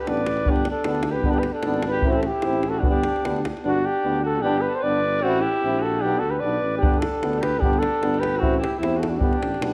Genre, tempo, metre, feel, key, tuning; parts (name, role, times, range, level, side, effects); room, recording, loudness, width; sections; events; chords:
balkan folk, Balkan brass band; 151 BPM; 2/4; straight; G major; A4 = 441 Hz
mellow flugelhorn; melody; 0.0-9.7 s; F#4 to D5; -27 LUFS; equal
warm alto saxophone; second line; 0.0-9.7 s; C4 to B4; -32 LUFS; equal
clear euphonium; accompaniment; 0.1-9.7 s; B3 to C4; -33 LUFS; equal
mellow trombone; accompaniment; 0.1-9.7 s; D4 to E4; -34 LUFS; equal
mellow tuba; bass; 0.1-9.7 s; G1 to E2; -30 LUFS; equal
davul; percussion; 0.1-3.6, 6.8-9.7 s; -28 LUFS; equal
moderate scoring stage reverb, RT60 2.0 s; -22 LUFS; mono
0.0-3.6 A section; 3.6-9.7 A section
0.5 G; 2.1 Am; 2.8 G; 5.2 Am; 6.0 Bm; 6.8 G; 8.4 Am; 9.2 G